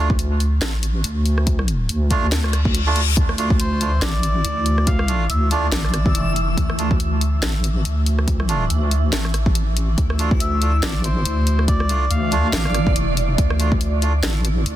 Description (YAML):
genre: deep dubstep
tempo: 141 BPM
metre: 4/4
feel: swing 57% on 16ths, half-time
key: D minor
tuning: A4 = 439 Hz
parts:
  - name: melodica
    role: stabs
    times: 0.0-14.1 s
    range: A3 to F4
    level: -28 LUFS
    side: right 4 dB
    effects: dub echo
  - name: deep soft wobble bass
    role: bass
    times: 0.0-14.8 s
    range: F1 to D2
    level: -19 LUFS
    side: equal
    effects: chorus
  - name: electronic kick drum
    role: drums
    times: 0.1-13.8 s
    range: none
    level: -20 LUFS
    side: equal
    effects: overdrive
  - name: garage drum kit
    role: drums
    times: 0.2-14.8 s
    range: hi-hat, rim click, snare drum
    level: -27 LUFS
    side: left 1 dB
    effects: none
  - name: reverse cymbal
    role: sound effects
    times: 2.5-3.2 s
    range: none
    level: -26 LUFS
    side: left 6 dB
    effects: none
  - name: backwards swelling texture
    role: texture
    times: 3.9-14.8 s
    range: E3 to E6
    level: -27 LUFS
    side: right 1 dB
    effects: built-in reverb
  - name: melodica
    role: melody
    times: 3.6-6.3, 10.4-12.9 s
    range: C5 to F5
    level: -28 LUFS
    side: left 1 dB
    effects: dub echo
room: little or no reverb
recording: dense, heavily limited modern master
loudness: -17 LUFS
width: side -13 dB against mid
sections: 0.0-14.8 A section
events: reverse cymbal 2.5-3.2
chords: 0.0 Dm